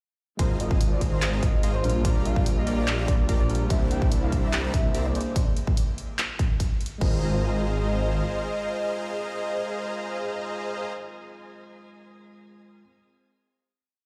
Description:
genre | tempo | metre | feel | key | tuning
future bass | 145 BPM | 4/4 | half-time | Ab lydian | A4 = 437 Hz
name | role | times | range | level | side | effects
warm velvety synth lead | melody | 0.4-10.9 s | C5 to G5 | -37 LUFS | equal | chorus, cassette tape, sidechain pumping, delay
tine electric piano | accompaniment | 0.4-12.8 s | G3 to C5 | -38 LUFS | equal | sidechain pumping, delay
bright chamber string section | sustained chords | 0.4-10.9 s | C3 to C5 | -42 LUFS | equal | none
dense compressed supersaw | riff | 0.4-10.9 s | G4 to Bb5 | -36 LUFS | equal | sidechain pumping, delay
detuned saw bass | bass | 0.4-8.2 s | Ab1 to C2 | -28 LUFS | equal | chorus, sidechain pumping
big-room dance drum kit | drums | 0.4-7.1 s | crash cymbal, handclaps, hi-hat | -35 LUFS | equal | none
electronic kick drum | drums | 0.4-7.1 s | none | -26 LUFS | equal | none
room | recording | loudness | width
little or no reverb | played on a big sound system in a bare room, stone room reverb | -25 LUFS | mono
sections
0.4-7.0 drop; 7.0-10.3 final chord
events
drop 0.4-7.0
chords
0.4 Ab69; 1.8 Gm7/Bb; 3.7 C9; 5.2 Bb9; 7.0 Ab69

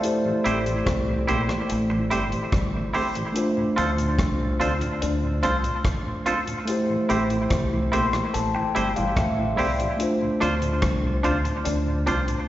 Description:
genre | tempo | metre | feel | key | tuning
lovers rock reggae | 72 BPM | 4/4 | straight | D minor | A4 = 439 Hz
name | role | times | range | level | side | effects
mellow tine electric piano | accompaniment | 0.0-12.5 s | A3 to C6 | -26 LUFS | left 1 dB | fast stereo tremolo
deep reggae drum kit | drums | 0.0-12.5 s | hi-hat, kick drum, rim click | -28 LUFS | equal | none
mellow tonewheel organ | accompaniment | 0.2-12.4 s | D2 to G4 | -32 LUFS | right 2 dB | slow rotary speaker, slapback echo
electric guitar through a small old amp | riff | 0.4-12.2 s | G3 to D4 | -33 LUFS | left 4 dB | dub echo
twangy electric guitar | stabs | 0.4-12.2 s | D4 to C5 | -28 LUFS | right 2 dB | dub echo, slapback echo
deep dub fingered electric bass | bass | 0.5-12.3 s | G1 to D2 | -27 LUFS | equal | none
room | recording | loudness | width
moderate lush hall reverb, RT60 1.9 s, small room ambience | live gig heard through the venue's PA, recital hall reverb, nothing above 7.7 kHz | -21 LUFS | side -14 dB against mid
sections
0.0-12.5 A section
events
tine electric piano fill 7.5-10.0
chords
0.0 Am7; 3.4 Dm7; 6.7 Am7; 10.0 Dm7

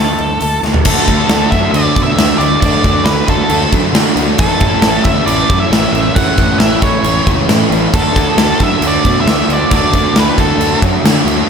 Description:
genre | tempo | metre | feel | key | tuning
quiet-loud alternative rock | 136 BPM | 4/4 | straight | unclear | A4 = 440 Hz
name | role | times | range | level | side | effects
octave-fuzz lead guitar | melody | 0.0-10.8 s | A4 to F#5 | -17 LUFS | right 1 dB | distortion, slapback echo
picked steel-string acoustic guitar | arpeggios | 0.0-0.8 s | D3 to A3 | -26 LUFS | left 4 dB | none
fuzz fingered electric bass | bass | 0.0-11.4 s | A1 to D3 | -19 LUFS | equal | overdrive
big rock drum kit | drums | 0.4-11.4 s | crash cymbal, hi-hat, kick drum, snare drum, toms | -13 LUFS | equal | none
thick fuzz guitar | riff | 0.8-11.5 s | A2 to D4 | -21 LUFS | equal | distortion
overdriven semi-hollow guitar | riff | 0.9-11.5 s | A2 to F#4 | -19 LUFS | right 10 dB | none
thick fuzz guitar | riff | 0.9-11.5 s | A2 to F#4 | -19 LUFS | left 11 dB | distortion, slapback echo
room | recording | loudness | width
moderate lush hall reverb, RT60 1.8 s, small room ambience | big arena sound | -10 LUFS | side -6 dB against mid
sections
0.9-11.5 A section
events
drum fill 0.6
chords
0.0 D5; 0.9 D; 4.4 A; 7.9 D

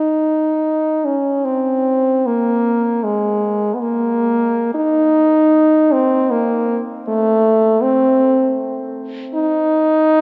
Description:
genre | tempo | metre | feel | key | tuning
classical, free, expressive piece for unaccompanied French horn | free time | none | none | unclear | A4 = 441 Hz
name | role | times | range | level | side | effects
clear French horn | solo | 0.0-10.2 s | Ab3 to Eb4 | -16 LUFS | equal | none
room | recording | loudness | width
wet cathedral reverb, RT60 4.9 s | none | -16 LUFS | mono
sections
0.0-10.2 A section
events
none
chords
none

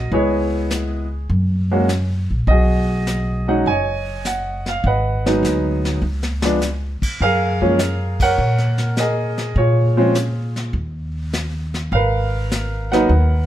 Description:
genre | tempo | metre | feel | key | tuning
jazz piano trio | 102 BPM | 4/4 | swing 69% on 8ths | unclear | A4 = 441 Hz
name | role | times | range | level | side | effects
warm grand piano | melody | 0.0-13.5 s | F3 to G#5 | -19 LUFS | right 1 dB | none
upright bass | bass | 0.0-13.5 s | F#1 to Bb2 | -20 LUFS | equal | none
vintage brush drum kit | drums | 0.1-13.5 s | brushed snare drum, crash cymbal, hi-hat, kick drum, snare drum | -26 LUFS | left 1 dB | none
room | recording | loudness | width
light reverb | none | -17 LUFS | side -12 dB against mid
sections
0.0-13.5 A section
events
drum fill 6.0-6.6; band accent 8.1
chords
0.1 Dbm7; 1.3 Gb; 2.5 B69; 4.8 Abm7; 6.0 N.C.; 7.2 Gbmaj9; 9.6 Bbm7; 10.7 N.C.; 11.9 Abm9

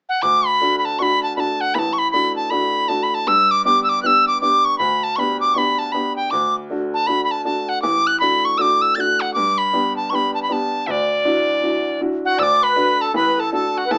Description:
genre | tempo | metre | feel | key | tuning
celtic folk | 158 BPM | 4/4 | swing 64% on 8ths | D major | A4 = 440 Hz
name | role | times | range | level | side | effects
bright reedy tin whistle | melody | 0.1-14.0 s | D5 to A6 | -19 LUFS | equal | none
clear upright piano | accompaniment | 0.2-14.0 s | A1 to G4 | -26 LUFS | equal | none
accordion | second line | 12.2-14.0 s | F#4 to D5 | -24 LUFS | equal | light tremolo tuning
room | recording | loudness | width
moderate studio ambience, RT60 0.5 s | small speaker sound | -18 LUFS | mono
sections
0.2-12.4 A section; 12.4-14.0 A section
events
none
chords
0.2 D; 3.3 G; 6.3 D; 9.3 G; 10.9 Dadd9; 12.4 D

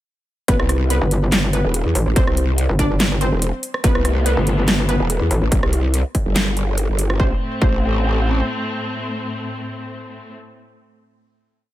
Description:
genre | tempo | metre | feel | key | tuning
heavy wobble dubstep | 143 BPM | 4/4 | swing 54% on 16ths, half-time | A minor | A4 = 438 Hz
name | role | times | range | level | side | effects
wide unison pluck | melody | 0.5-10.7 s | B3 to D5 | -26 LUFS | equal | ping-pong delay
growl bass | bass | 0.5-8.4 s | E1 to E2 | -18 LUFS | equal | chorus, overdrive
dubstep drum kit | drums | 0.5-7.2 s | handclaps, hi-hat, rim click, snare drum | -22 LUFS | equal | none
electronic kick drum | drums | 0.5-7.7 s | none | -18 LUFS | equal | distortion
metallic wobble bass | bass | 1.0-5.4 s | G1 to A1 | -18 LUFS | equal | chorus, overdrive
rich studio string section | sustained chords | 3.8-10.3 s | A2 to C4 | -25 LUFS | left 1 dB | vintage 12-bit sampler grit, sidechain pumping
room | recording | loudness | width
digital ambience | none | -16 LUFS | side -14 dB against mid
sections
0.5-7.2 drop; 7.2-10.6 final chord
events
drop 0.5-7.2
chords
0.5 Amadd9; 7.2 Am

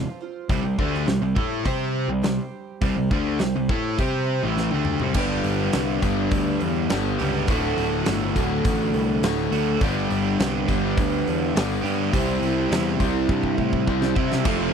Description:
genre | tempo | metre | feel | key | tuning
classic rock | 103 BPM | 4/4 | straight | unclear | A4 = 440 Hz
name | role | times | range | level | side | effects
picked twelve-string acoustic guitar | accompaniment | 0.0-14.7 s | G2 to C5 | -31 LUFS | right 9 dB | none
distorted electric guitar | riff | 0.0-14.7 s | D2 to C5 | -26 LUFS | right 14 dB | overdrive
overdriven semi-hollow guitar | riff | 0.0-14.7 s | D2 to C5 | -26 LUFS | left 15 dB | none
fuzz picked electric bass | bass | 0.0-14.7 s | D1 to C3 | -27 LUFS | equal | overdrive
huge arena drum kit | drums | 0.5-14.6 s | crash cymbal, hi-hat, kick drum, snare drum, toms | -26 LUFS | equal | none
thick fuzz guitar | riff | 14.4-14.7 s | F2 to F3 | -26 LUFS | right 3 dB | distortion
room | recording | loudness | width
little or no reverb | dry, close 1970s-style studio recording | -20 LUFS | side -7 dB against mid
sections
0.0-5.2 A section; 5.2-14.5 B section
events
drum fill 4.6-5.2, 13.3-14.5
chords
0.5 C5; 5.2 G; 7.5 D; 9.8 G; 12.1 C

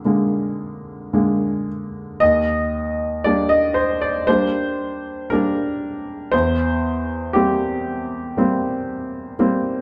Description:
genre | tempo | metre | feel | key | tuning
neoclassical minimalist piano | 58 BPM | 4/4 | rubato | Eb major | A4 = 438 Hz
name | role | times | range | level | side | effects
clear baby grand piano | solo | 0.0-9.8 s | Eb2 to Eb5 | -21 LUFS | equal | none
room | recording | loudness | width
wet stone room reverb, RT60 1.3 s | band playing live in one room | -21 LUFS | mono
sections
0.0-2.2 A section; 2.2-9.8 A section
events
none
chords
0.0 Bb7/F; 2.2 Ebmaj7; 6.3 C7/E

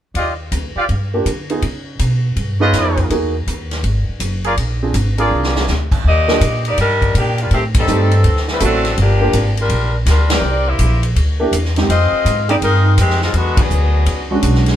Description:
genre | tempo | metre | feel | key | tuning
jazz, big band swing | 164 BPM | 4/4 | swing 65% on 8ths | Eb major | A4 = 440 Hz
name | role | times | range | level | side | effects
upright bass | bass | 0.1-14.8 s | F#1 to D3 | -16 LUFS | equal | none
swinging big-band drum kit | drums | 0.1-14.8 s | crash cymbal, hi-hat, kick drum, ride cymbal, snare drum | -22 LUFS | equal | none
clear trumpet section | stabs | 0.2-5.7 s | F4 to F5 | -18 LUFS | right 1 dB | none
warm concert grand piano | accompaniment | 1.1-14.8 s | Ab3 to G5 | -19 LUFS | right 2 dB | none
bright saxophone section | melody | 6.1-14.3 s | D3 to Eb5 | -18 LUFS | left 2 dB | none
room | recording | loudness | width
light reverb | band playing live in one room | -13 LUFS | side -11 dB against mid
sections
0.2-6.0 A section; 6.0-14.8 B section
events
drum fill 5.3-5.7; band accent 7.7, 10.2, 13.5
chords
0.2 Ebmaj9; 1.6 Db9; 3.1 Emaj9#11; 4.6 Bb7; 6.0 Ebmaj7; 7.5 Am7b5; 8.2 D7; 9.0 Gm7; 10.4 C7; 11.9 Fm7; 13.3 E13

